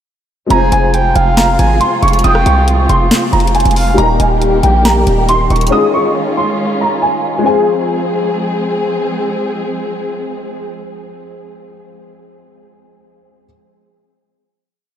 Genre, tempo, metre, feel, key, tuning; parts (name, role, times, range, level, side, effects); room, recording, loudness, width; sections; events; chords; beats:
hip hop, trap; 138 BPM; 4/4; half-time; F minor; A4 = 440 Hz
dark concert grand piano; melody; 0.5-8.7 s; G5 to Eb6; -16 LUFS; right 2 dB; ensemble chorus, tape echo
breathy flute-like synth lead; second line; 0.5-4.0 s; F5 to Ab5; -19 LUFS; right 1 dB; chorus, tape echo
dark grand piano; accompaniment; 0.5-13.5 s; G3 to C5; -18 LUFS; left 4 dB; ensemble chorus
dark symphonic string section; sustained chords; 0.5-10.7 s; C3 to Ab4; -19 LUFS; equal
hard-hitting 808-style bass; bass; 0.5-5.7 s; Eb1 to C2; -13 LUFS; equal
trap drum kit; drums; 0.5-5.7 s; hi-hat, rim click, snare drum; -19 LUFS; left 1 dB
moderate huge ambient reverb, RT60 6.5 s; dreamy mix soaked in reverb; -10 LUFS; side -9 dB against mid
0.5-7.5 hook; 7.5-10.9 final chord
0.5 Fm; 4.0 Eb; 5.7 Dbadd9; 7.5 Fm
| 0.50 0.94 1.37 1.81 | 2.24 2.68 3.11 3.55 | 3.98 4.42 4.85 5.29 | 5.72 6.16 6.59 7.03 | 7.46 7.89 8.33 8.76 | 9.20 9.63 10.07 10.50